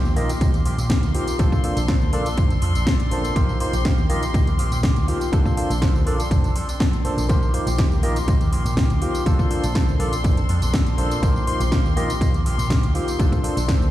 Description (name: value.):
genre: filtered disco house.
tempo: 122 BPM.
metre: 4/4.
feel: straight.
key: Bb major.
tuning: A4 = 441 Hz.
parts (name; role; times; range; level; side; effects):
bright tine electric piano; accompaniment; 0.0-13.9 s; Bb3 to Eb5; -27 LUFS; left 1 dB; phaser, vintage 12-bit sampler grit, sidechain pumping.
rich chamber string section; sustained chords; 0.0-13.9 s; C6; -33 LUFS; left 6 dB; vintage 12-bit sampler grit, sidechain pumping.
electric guitar with an envelope filter; riff; 0.0-13.9 s; F3 to A4; -32 LUFS; right 5 dB; spring reverb, sidechain pumping.
overdriven fingered electric bass; bass; 0.0-13.9 s; F1 to Bb2; -23 LUFS; equal; sidechain pumping.
house drum kit; drums; 0.1-13.9 s; hi-hat, snare drum, tambourine; -30 LUFS; left 1 dB; overdrive, sidechain pumping on hats, sidechain pumping on cymbals, sidechain pumping on perc.
electronic kick drum; drums; 0.4-13.8 s; none; -20 LUFS; equal; overdrive.
room: digital ambience.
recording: played on a big sound system in a bare room, large studio reverb.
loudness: -18 LUFS.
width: side -14 dB against mid.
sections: 0.0-13.9 A section.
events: none.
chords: 0.0 Eb69/Bb; 1.4 Bbmaj9; 3.4 Eb69/Bb; 5.3 Bbmaj9; 7.3 Eb69/Bb; 9.3 Bbmaj9; 11.2 Eb69/Bb; 13.2 Bbmaj9.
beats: 0.41 0.90 | 1.39 1.88 2.38 2.87 | 3.36 3.85 4.34 4.83 | 5.33 5.82 6.31 6.80 | 7.29 7.79 8.28 8.77 | 9.26 9.75 10.24 10.74 | 11.23 11.72 12.21 12.70 | 13.20 13.69.